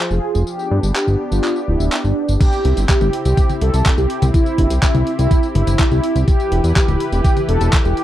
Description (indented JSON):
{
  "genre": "italo disco",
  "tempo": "124 BPM",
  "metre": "4/4",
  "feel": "straight",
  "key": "C major",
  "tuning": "A4 = 440 Hz",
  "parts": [
    { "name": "mellow synth brass", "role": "melody", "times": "0.0-8.0 s", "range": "D4 to A4", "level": "-21 LUFS", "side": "equal", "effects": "chorus, tape echo" },
    { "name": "warm analog pad", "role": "sustained chords", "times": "0.0-8.0 s", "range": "E3 to C5", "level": "-24 LUFS", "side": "equal", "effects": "wide subtle chorus" },
    { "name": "fat analog bass", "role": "bass", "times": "0.1-7.9 s", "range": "D1 to G2", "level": "-16 LUFS", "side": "equal", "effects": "none" },
    { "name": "dusty soul sampler-style drum kit", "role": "drums", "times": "0.1-8.0 s", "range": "crash cymbal, handclaps, hi-hat, tambourine, toms", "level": "-24 LUFS", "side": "left 2 dB", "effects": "none" },
    { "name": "electronic kick drum", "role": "drums", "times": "2.4-7.8 s", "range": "none", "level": "-15 LUFS", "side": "equal", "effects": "none" }
  ],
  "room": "little or no reverb",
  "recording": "dry, close 1970s-style studio recording",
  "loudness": "-14 LUFS",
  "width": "side -13 dB against mid",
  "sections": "0.0-2.4 A section; 2.4-8.0 B section",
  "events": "none",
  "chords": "0.5 G; 2.4 C; 6.3 Em"
}